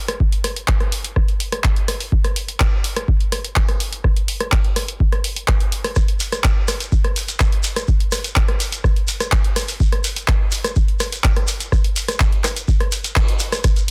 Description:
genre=house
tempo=125 BPM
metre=4/4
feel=straight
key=none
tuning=none
part: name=punchy analog drum machine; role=drums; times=0.1-13.9 s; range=handclaps, hi-hat, rim click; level=-25 LUFS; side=equal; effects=none
part: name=electronic kick drum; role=drums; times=0.2-13.7 s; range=none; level=-20 LUFS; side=equal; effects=none
part: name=shekere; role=percussion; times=6.0-13.9 s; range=none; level=-30 LUFS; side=equal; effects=none
room=little or no reverb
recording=dense, heavily limited modern master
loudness=-19 LUFS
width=mono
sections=0.0-13.6 A section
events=band accent 13.2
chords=none

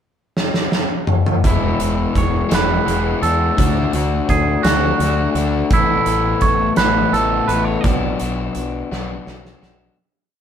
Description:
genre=indie rock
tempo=56 BPM (dotted quarters)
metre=6/8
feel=straight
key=unclear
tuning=A4 = 440 Hz
part: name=big rock drum kit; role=drums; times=0.4-9.8 s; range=hi-hat, kick drum, snare drum, toms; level=-19 LUFS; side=equal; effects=none
part: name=crunchy overdriven guitar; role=riff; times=1.4-10.0 s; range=E2 to A4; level=-20 LUFS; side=left 5 dB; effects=none
part: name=fuzz fingered electric bass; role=bass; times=1.4-9.9 s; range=E1 to E2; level=-22 LUFS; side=right 1 dB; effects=overdrive
part: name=twangy electric guitar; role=melody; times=1.5-9.2 s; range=E4 to D5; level=-20 LUFS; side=right 5 dB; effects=phaser
room=moderate stone room reverb, RT60 1.2 s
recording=band playing live in one room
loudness=-15 LUFS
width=side -8 dB against mid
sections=0.0-1.4 pickup bar; 1.4-10.0 interlude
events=drum fill 0.4-1.4, 8.9-10.0; fade-out 7.8-10.0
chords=0.0 N.C.; 1.4 E; 3.6 D; 5.7 Asus2; 7.8 Bm

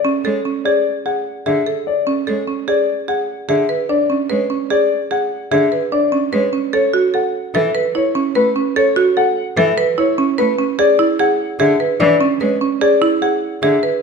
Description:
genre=classical, minimalist pattern music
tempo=148 BPM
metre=5/4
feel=straight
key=unclear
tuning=A4 = 438 Hz
part: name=dark grand piano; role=melody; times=0.0-13.9 s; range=B4 to F#5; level=-18 LUFS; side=left 8 dB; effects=none
part: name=buzzing marimba with hard mallets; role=arpeggios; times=0.0-14.0 s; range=C#4 to B4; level=-17 LUFS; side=right 6 dB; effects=none
part: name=clear cello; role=accompaniment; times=0.2-13.8 s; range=D3 to A3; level=-21 LUFS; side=left 1 dB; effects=none
room=moderate recital hall reverb, RT60 1.5 s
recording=recorded in a church or concert hall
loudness=-14 LUFS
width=side -5 dB against mid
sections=0.0-14.0 A section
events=none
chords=0.0 Dmaj7(no3); 2.7 E7 (rootless); 6.7 Aadd9; 10.8 E7

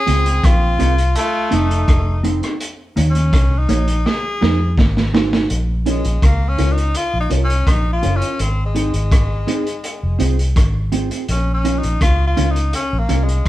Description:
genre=roots reggae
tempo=83 BPM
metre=4/4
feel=straight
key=Bb minor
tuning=A4 = 437 Hz
part: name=clear tenor saxophone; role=melody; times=0.0-13.5 s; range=Ab3 to Ab4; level=-22 LUFS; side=left 2 dB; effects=none
part: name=clear trombone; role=second line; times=0.0-2.2 s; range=A3 to C4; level=-24 LUFS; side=right 1 dB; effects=none
part: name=mellow electric guitar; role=accompaniment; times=0.1-13.3 s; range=Ab3 to Db5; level=-22 LUFS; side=right 2 dB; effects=phaser
part: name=vintage muted fingered electric bass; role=bass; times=0.1-13.5 s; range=F1 to F2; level=-17 LUFS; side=equal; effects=none
part: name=vintage drum kit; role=drums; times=0.1-13.5 s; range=hi-hat, kick drum, rim click, snare drum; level=-18 LUFS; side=equal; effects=none
room=light reverb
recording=band playing live in one room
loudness=-14 LUFS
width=side -15 dB against mid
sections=0.0-5.5 A section; 5.5-13.5 B section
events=drum fill 4.1-5.5; tenor saxophone solo 5.5-13.5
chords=0.0 Dbmaj7; 1.2 F7; 2.6 Ebm7; 4.1 Fm7; 4.8 Ab7; 5.5 Bbm; 8.4 Ab; 9.8 Fm; 11.3 Bbm

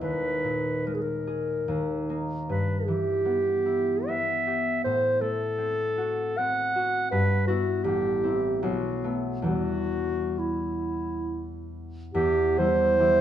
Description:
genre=classical, romantic duo for clarinet and harp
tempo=65-85 BPM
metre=3/4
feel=rubato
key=E minor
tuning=A4 = 438 Hz
part: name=clear clarinet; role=melody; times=0.0-13.2 s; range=E4 to F#5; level=-25 LUFS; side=right 1 dB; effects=none
part: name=concert harp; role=accompaniment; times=0.0-13.2 s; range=A1 to G#4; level=-29 LUFS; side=left 1 dB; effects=none
room=wet stone room reverb, RT60 1.0 s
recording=minimal, uncompressed stereo recording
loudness=-24 LUFS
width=side -10 dB against mid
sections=0.0-12.1 A section; 12.1-13.2 B section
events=none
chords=0.0 D#sus4; 1.7 D#5; 2.5 Em/G; 4.8 F#dim/A; 7.1 Em/G; 7.8 Am; 8.6 B5; 9.5 Em

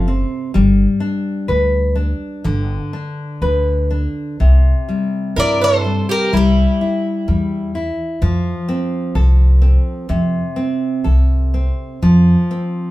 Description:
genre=fado-style ballad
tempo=62 BPM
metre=2/4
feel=rubato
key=F major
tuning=A4 = 440 Hz
part: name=Irish bouzouki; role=melody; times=0.0-0.1, 5.4-7.7 s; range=G4 to D5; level=-18 LUFS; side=equal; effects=none
part: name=fingerpicked twelve-string acoustic guitar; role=second line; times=0.0-0.1, 5.4-7.7 s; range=E4 to Bb4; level=-22 LUFS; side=right 2 dB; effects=none
part: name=nylon-string guitar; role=accompaniment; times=0.0-12.9 s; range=C3 to B4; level=-19 LUFS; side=left 1 dB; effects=none
part: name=upright bass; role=bass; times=0.0-12.3 s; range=Gb1 to G2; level=-14 LUFS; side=equal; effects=none
room=moderate studio reverb, RT60 0.6 s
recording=band playing live in one room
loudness=-14 LUFS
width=side -17 dB against mid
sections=0.0-12.0 A section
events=none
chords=0.0 N.C.; 0.5 G; 4.4 C; 8.2 F; 12.0 F5

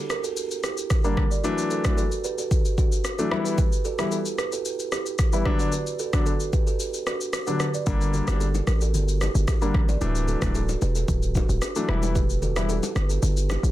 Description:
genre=afrobeats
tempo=112 BPM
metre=4/4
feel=straight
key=D major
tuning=A4 = 440 Hz
part: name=kalimba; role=riff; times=0.1-13.6 s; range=D4 to D5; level=-30 LUFS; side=right 6 dB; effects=digital delay
part: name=afro-pop drum kit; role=drums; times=0.1-13.7 s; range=kick drum, rim click, shaker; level=-25 LUFS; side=equal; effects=overdrive
part: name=warm grand piano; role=accompaniment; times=1.0-12.7 s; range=D3 to E4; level=-27 LUFS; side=left 4 dB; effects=plate reverb
part: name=hard-hitting 808-style bass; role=bass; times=7.9-13.7 s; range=D1 to A1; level=-24 LUFS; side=equal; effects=none
part: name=congas and bongos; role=percussion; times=7.9-13.6 s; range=none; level=-35 LUFS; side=left 5 dB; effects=none
room=light reverb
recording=dense, heavily limited modern master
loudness=-22 LUFS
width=side -14 dB against mid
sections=0.0-13.7 A section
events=break 6.8-7.9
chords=0.0 Gm; 1.4 Dadd9; 3.3 Em; 5.5 Bm; 7.9 Gm; 10.0 Dadd9; 11.9 Em

